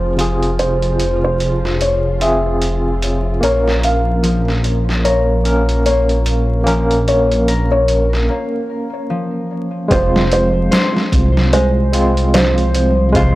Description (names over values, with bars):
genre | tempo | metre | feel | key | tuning
trip hop | 74 BPM | 4/4 | swing 58% on 16ths | F minor | A4 = 439 Hz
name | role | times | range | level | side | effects
felt-muted upright piano | melody | 0.0-13.1 s | C5 to F5 | -19 LUFS | equal | tape echo
overdriven tine electric piano | accompaniment | 0.0-13.4 s | C3 to Bb4 | -19 LUFS | equal | tremolo
string machine, cellos | sustained chords | 0.0-8.3 s | F3 to F4 | -28 LUFS | right 1 dB | phaser, ensemble chorus
dark detuned saw bass | bass | 0.0-13.4 s | F1 to C2 | -17 LUFS | equal | none
trip hop sampler-style drum kit | drums | 0.2-13.4 s | hi-hat, kick drum, snare drum | -20 LUFS | equal | high-pass filter on snare, high-pass filter on hats, high-pass filter on kick, high-pass filter on room
concert harp | arpeggios | 3.4-13.4 s | F3 to C5 | -23 LUFS | left 2 dB | tape echo
room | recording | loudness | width
little or no reverb | dry, gritty hardware recording, vinyl crackle | -13 LUFS | side -17 dB against mid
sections
0.0-9.9 A section; 9.9-13.4 B section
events
break 8.3-9.9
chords
0.0 Fm; 3.4 Bbm; 9.9 Fm